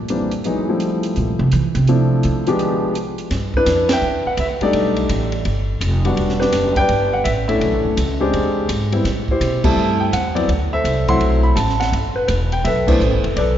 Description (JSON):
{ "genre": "jazz piano trio", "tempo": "167 BPM", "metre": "4/4", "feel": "swing 65% on 8ths", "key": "G major from 3.3 s", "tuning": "A4 = 440 Hz", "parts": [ { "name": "upright bass", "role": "bass", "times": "0.0-13.6 s", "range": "E1 to E3", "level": "-20 LUFS", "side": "equal", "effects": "none" }, { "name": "warm concert grand piano", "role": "melody", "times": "0.1-13.6 s", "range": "E3 to C6", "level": "-18 LUFS", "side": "left 1 dB", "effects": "none" }, { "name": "compact cocktail drum kit", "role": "drums", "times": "0.1-13.5 s", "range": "crash cymbal, hi-hat, kick drum, ride cymbal, snare drum", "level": "-25 LUFS", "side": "right 1 dB", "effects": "none" } ], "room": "moderate church reverb, RT60 3.2 s", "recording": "recorded in a church or concert hall, nothing above 7.6 kHz", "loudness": "-15 LUFS", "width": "side -10 dB against mid", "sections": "0.0-3.3 A section; 3.3-13.6 B section", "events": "upright bass solo 0.0-3.3; band accent 3.8, 9.6, 12.8", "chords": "0.4 Fmaj9; 1.9 Dm9; 2.6 G7b9; 3.3 G6; 4.7 B7alt; 6.2 Em9; 7.6 Bm11; 8.3 E7alt; 9.1 Am9; 10.5 D13; 11.9 G69" }